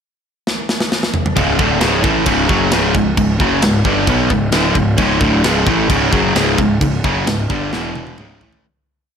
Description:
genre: heavy metal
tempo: 132 BPM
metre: 4/4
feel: straight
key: C# minor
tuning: A4 = 440 Hz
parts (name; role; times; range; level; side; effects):
- tight metal drum kit; drums; 0.5-8.6 s; crash cymbal, kick drum, snare drum, toms; -18 LUFS; equal; none
- distorted electric guitar; riff; 1.4-8.6 s; C#2 to B3; -14 LUFS; equal; overdrive
- fuzz picked electric bass; bass; 1.4-8.6 s; C#1 to B1; -20 LUFS; equal; overdrive
room: studio reverb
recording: none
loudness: -12 LUFS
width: side -7 dB against mid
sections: 0.0-1.4 pickup bar; 1.4-8.6 riff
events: drum fill 0.5-1.4, 7.7-8.6; fade-out 6.8-8.6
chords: 0.0 N.C.; 1.4 C#5; 7.7 E5; 8.2 C#m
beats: 0.01 0.46 0.92 | 1.37 1.82 2.27 2.73 | 3.18 3.63 4.09 4.54 | 4.99 5.45 5.91 6.36 | 6.82 7.28 7.73 8.19

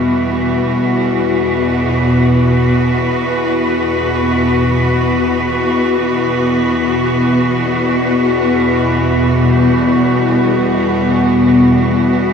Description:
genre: dark ambient drone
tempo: free time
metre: none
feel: none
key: E minor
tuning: A4 = 441 Hz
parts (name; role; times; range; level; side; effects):
- bright studio cello section; sustained chords; 0.0-12.3 s; E3 to B4; -15 LUFS; equal; none
- tubular bells; arpeggios; 0.0-12.3 s; E4 to F#4; -29 LUFS; right 2 dB; diffuse ambient delay
- bowed-like drone; drone; 0.0-12.3 s; E2 to B2; -14 LUFS; left 1 dB; built-in reverb, phaser
- bronze singing bowl; texture; 0.0-12.3 s; none; barely audible; none; none
room: wet plate reverb, RT60 2.6 s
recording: dreamy mix soaked in reverb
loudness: -11 LUFS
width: side -6 dB against mid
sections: 0.0-12.3 A section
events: fade-in on tubular bells 0.0-12.3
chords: 0.0 Em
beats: free time

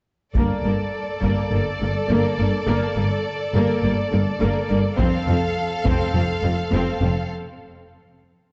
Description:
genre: cinematic, epic orchestral film score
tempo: 104 BPM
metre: 4/4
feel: straight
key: G minor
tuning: A4 = 439 Hz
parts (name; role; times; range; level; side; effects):
- warm symphonic violin section; second line; 0.3-7.3 s; A4; -32 LUFS; equal; none
- rich symphonic viola section; accompaniment; 0.3-7.1 s; Bb3 to C4; -28 LUFS; equal; none
- rich symphonic double bass section; bass; 0.3-7.1 s; F1 to G1; -27 LUFS; equal; none
- taiko ensemble; drums; 0.3-6.1 s; none; -28 LUFS; equal; none
- warm symphonic violin section; melody; 0.4-7.3 s; D5 to F5; -31 LUFS; equal; none
- rich symphonic cello section; bass; 0.4-7.1 s; F2 to G2; -27 LUFS; equal; none
room: moderate scoring stage reverb, RT60 2.2 s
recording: dark, warm production, nothing above 7.9 kHz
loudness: -22 LUFS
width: mono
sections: 0.3-8.5 A section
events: break 7.3-8.5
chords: 0.3 Gmadd9; 5.0 F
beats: | 0.35 0.93 1.51 2.10 | 2.68 3.25 3.83 4.41 | 4.98 5.56 6.14 6.72 | 7.30

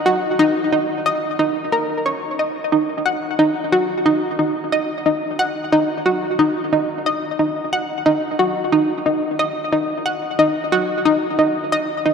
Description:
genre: ambient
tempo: 90 BPM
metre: 4/4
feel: straight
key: Eb minor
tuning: A4 = 440 Hz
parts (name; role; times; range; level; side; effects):
- analog pluck; solo; 0.1-12.1 s; Eb4 to Gb5; -17 LUFS; equal; chorus, analog delay
room: wet cathedral reverb, RT60 5.5 s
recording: in a vast, echoing space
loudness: -17 LUFS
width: side -6 dB against mid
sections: 0.0-2.7 A section; 2.7-12.1 B section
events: none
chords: none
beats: | 0.06 0.73 1.39 2.06 | 2.73 3.39 4.06 4.73 | 5.39 6.06 6.73 7.39 | 8.06 8.73 9.39 10.06 | 10.73 11.39 12.06

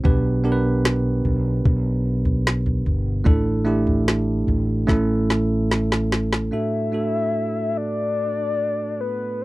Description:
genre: pop ballad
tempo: 74 BPM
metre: 4/4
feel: straight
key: D major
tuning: A4 = 441 Hz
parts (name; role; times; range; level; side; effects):
- bell-like tine electric piano; accompaniment; 0.0-9.4 s; A2 to B4; -22 LUFS; right 2 dB; none
- smooth R&B drum kit; drums; 0.0-6.5 s; kick drum, snare drum, toms; -21 LUFS; equal; none
- fretless electric bass; bass; 0.1-6.5 s; G1 to B1; -23 LUFS; equal; none
- soft octave-layered synth lead; melody; 6.5-9.4 s; B4 to E5; -24 LUFS; left 3 dB; chorus
room: little or no reverb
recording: dry, close 1970s-style studio recording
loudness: -19 LUFS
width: side -19 dB against mid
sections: 0.0-6.5 A section; 6.5-9.4 B section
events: drum fill 4.9-6.5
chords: 0.1 G/B; 3.3 Asus4; 4.9 A; 6.5 D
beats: | 0.05 0.85 1.65 2.46 | 3.26 4.07 4.88 5.70 | 6.53 7.35 8.18 9.00

